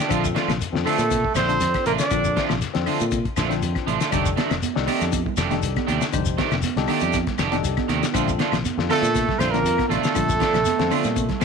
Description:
afrobeat; 119 BPM; 4/4; swing 53% on 16ths; A4 = 437 Hz
electric guitar at the edge of break-up; stabs; 0.0-11.4 s; Eb3 to G4; -27 LUFS; right 13 dB; analog chorus
cloth-damped thuddy drum kit; drums; 0.0-11.4 s; hi-hat, kick drum, snare drum; -27 LUFS; left 5 dB
barky tine electric piano; accompaniment; 0.1-11.4 s; C4 to G5; -30 LUFS; left 13 dB; overdrive, wide subtle chorus
electric guitar at the edge of break-up; arpeggios; 0.1-11.3 s; C3 to Eb3; -31 LUFS; left 12 dB; spring reverb
fingered electric bass; bass; 0.1-11.4 s; F1 to Bb2; -26 LUFS; equal
claves; percussion; 0.1-11.4 s; -35 LUFS; left 17 dB
shekere; percussion; 0.1-11.4 s; -32 LUFS; left 5 dB
mellow trumpet; melody; 0.9-2.5, 8.9-11.4 s; A4 to D5; -24 LUFS; equal
breathy tenor saxophone; second line; 0.9-2.5, 8.9-11.4 s; A3 to D4; -27 LUFS; right 13 dB
congas; percussion; 4.1-11.4 s; -29 LUFS; right 17 dB
light reverb, small room ambience; 1960s-style stereo with parts hard left and right; -19 LUFS; side -5 dB against mid
0.0-11.4 A section
tine electric piano fill 11.2
0.1 Bbmaj7; 4.1 F13; 8.1 Bbmaj7

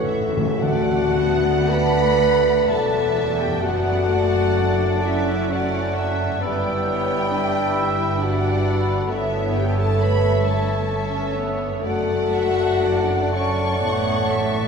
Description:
classical, slow romantic movement for symphony orchestra; 52-68 BPM; 3/4; rubato; D major; A4 = 440 Hz
warm oboe; second line; 0.0-14.7 s; C#5 to F#5; -32 LUFS; right 2 dB
warm studio violin section; second line; 0.0-14.7 s; E5 to C#6; -29 LUFS; left 2 dB
dark symphonic viola section; accompaniment; 0.0-14.7 s; F#3 to E4; -30 LUFS; right 1 dB
mellow bassoon; accompaniment; 0.0-14.7 s; E3 to A3; -30 LUFS; right 2 dB
mellow French horn section; sustained chords; 0.0-14.7 s; E3 to C#5; -23 LUFS; left 2 dB
concert harp; arpeggios; 0.0-14.7 s; F#2 to D5; -30 LUFS; left 4 dB
rich studio double bass section; bass; 0.0-14.7 s; E1 to D2; -28 LUFS; right 2 dB
rich symphonic cello section; bass; 0.0-14.7 s; D2 to A2; -26 LUFS; right 2 dB
timpani; percussion; 0.0-2.2 s; A2 to D3; -27 LUFS; right 1 dB
rich symphonic violin section; melody; 0.6-14.7 s; B4 to F#5; -32 LUFS; left 2 dB
clear clarinet; second line; 0.6-14.7 s; C#5 to D5; -32 LUFS; left 1 dB
mellow large flute ensemble; second line; 0.6-14.7 s; A5 to B5; -31 LUFS; left 1 dB
wet church reverb, RT60 3.3 s; recorded in a church or concert hall; -18 LUFS; side -5 dB against mid
0.6-14.7 A section
timpani fill 0.0-0.6
0.0 A; 0.6 D; 3.6 D/F#; 6.4 Em7/G; 9.1 A7/G; 11.9 D/F#

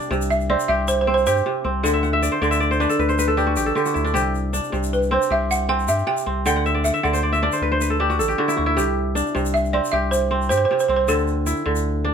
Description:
west african traditional, West African string and xylophone music; 104 BPM (dotted quarters); 12/8; straight; C lydian; A4 = 441 Hz
kora; arpeggios; 0.0-12.1 s; C3 to G5; -21 LUFS; equal
egg shaker; percussion; 0.0-11.8 s; -34 LUFS; left 6 dB
round analog bass; bass; 0.1-12.1 s; A1 to G2; -24 LUFS; left 1 dB
balafon; melody; 0.3-12.1 s; A4 to G5; -21 LUFS; right 2 dB; plate reverb
light reverb; -18 LUFS; side -7 dB against mid
0.0-12.1 A section
kora fill 1.8-4.2, 6.5-8.8
0.0 C5; 1.8 D5; 4.2 C5; 6.5 D; 8.8 C5; 11.1 D5

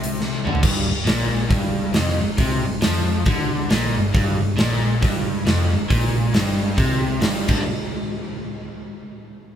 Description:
blues rock power trio and southern rock; 137 BPM; 4/4; swing 62% on 8ths; G minor; A4 = 440 Hz
crunchy overdriven guitar; riff; 0.0-7.6 s; F2 to D4; -22 LUFS; left 1 dB
vintage muted picked electric bass; bass; 0.0-7.6 s; F1 to F2; -25 LUFS; equal
huge arena drum kit; drums; 0.0-7.6 s; crash cymbal, hi-hat, kick drum, snare drum, toms; -21 LUFS; equal
moderate large studio reverb, RT60 1.1 s; band playing live in one room; -18 LUFS; side -9 dB against mid
0.6-7.7 A section; 7.7-9.4 B section
drum fill 0.2-0.6, 7.4
0.0 N.C.; 0.6 Gm; 7.7 N.C.

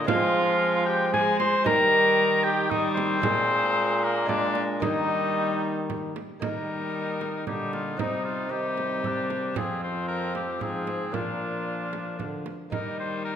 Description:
classical, renaissance-style consort dance; 114 BPM; 3/4; straight; Eb major; A4 = 440 Hz
clear oboe; melody; 0.0-13.4 s; Eb4 to C6; -27 LUFS; left 3 dB
lute; accompaniment; 0.0-13.4 s; F2 to Eb5; -34 LUFS; left 1 dB
rich viola; accompaniment; 0.0-13.4 s; F3 to Ab3; -32 LUFS; left 2 dB
clear trombone; bass; 0.0-13.4 s; F2 to F3; -31 LUFS; right 1 dB
mellow cor anglais; second line; 0.1-13.4 s; Bb3 to C5; -30 LUFS; right 2 dB
frame drum; percussion; 0.1-13.0 s; -34 LUFS; right 6 dB
wet recital hall reverb, RT60 1.5 s; -23 LUFS; side -9 dB against mid
0.0-6.4 A section; 6.4-13.4 B section
0.1 Fm; 1.7 Eb; 3.2 Bb7; 4.8 Eb; 8.0 Cm; 9.6 Fm; 11.1 Bb; 12.7 Eb

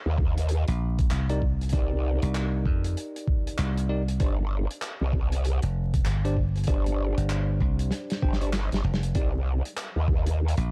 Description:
glitch hop; 97 BPM; 4/4; swing 61% on 16ths; C minor; A4 = 440 Hz
growl bass; bass; 0.1-10.5 s; G1 to Eb2; -28 LUFS; equal; chorus
electronic kick drum; drums; 0.2-10.2 s; -28 LUFS; equal
warm soul drum kit; drums; 0.4-10.7 s; handclaps, hi-hat, snare drum; -37 LUFS; equal
dry thumbed slap bass; bass; 0.7-10.7 s; F1 to F2; -28 LUFS; equal; tube saturation
bell-like tine electric piano; stabs; 1.3-9.3 s; D4 to G5; -37 LUFS; equal; vintage 12-bit sampler grit, sidechain pumping, dub echo
small room reverb; dark, warm production, vinyl crackle; -26 LUFS; mono
0.0-10.7 A section
drum fill 7.9-9.2
0.0 Cm7; 4.2 Gsus4; 9.2 Cm7

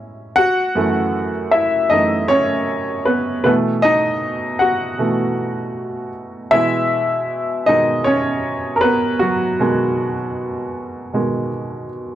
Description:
hip hop; 78 BPM; 4/4; swing 60% on 16ths; A4 = 440 Hz
clear upright piano; solo; 0.0-12.2 s; F#2 to F#5; -16 LUFS; equal
wet studio reverb, RT60 0.5 s; -16 LUFS; side -12 dB against mid
0.0-12.2 A section
upright piano solo 0.0-12.2
0.4 F#m7; 3.4 B7sus4; 6.5 Emaj9/B

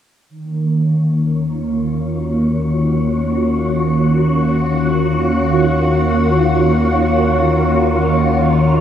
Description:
ambient, sequencer-driven space music; free time; A4 = 438 Hz
phased string machine; sustained chords; 0.3-8.8 s; Eb3 to Gb4; -14 LUFS; equal; ensemble chorus, phaser
analog drone; bass; 0.3-8.8 s; Eb2; -23 LUFS; equal; chorus
wind-like tuned noise texture; texture; 1.4-8.8 s; Db4 to Db5; -21 LUFS; equal; built-in reverb
wet huge ambient reverb, RT60 8.1 s; in a vast, echoing space, cassette tape; -13 LUFS; side -9 dB against mid
0.3-8.8 A section
fade-in on synth drone 0.3-8.8; filter sweep on string machine 0.3-8.8
0.3 Ebmadd9

